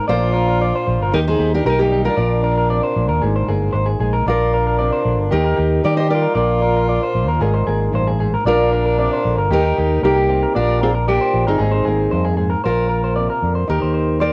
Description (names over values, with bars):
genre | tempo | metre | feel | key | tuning
highlife guitar band | 115 BPM | 4/4 | straight | Bb mixolydian | A4 = 442 Hz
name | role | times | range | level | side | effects
flamenco guitar | accompaniment | 0.0-14.3 s | G2 to Bb4 | -27 LUFS | equal | cassette tape
electric guitar through a small old amp | arpeggios | 0.0-14.3 s | G4 to D5 | -25 LUFS | equal | cassette tape, analog delay
fingerpicked steel-string acoustic guitar | melody | 0.1-14.3 s | D4 to Eb5 | -22 LUFS | equal | cassette tape
breathy alto saxophone | second line | 0.1-12.3 s | Bb3 to G4 | -28 LUFS | equal | cassette tape, analog delay
fingered electric bass | bass | 0.1-14.3 s | G1 to Eb3 | -22 LUFS | equal | none
room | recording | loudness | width
light reverb | home recording on cassette | -17 LUFS | mono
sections
0.0-12.6 A section; 12.6-14.3 B section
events
none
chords
0.1 Bb; 1.1 Eb; 2.2 Bb; 3.2 Abadd9; 4.3 Bb; 5.3 Eb; 6.4 Bb; 7.4 Abadd9; 8.5 Bb; 9.5 Eb; 10.5 Bb; 11.6 Abadd9; 12.6 Bb; 13.7 Eb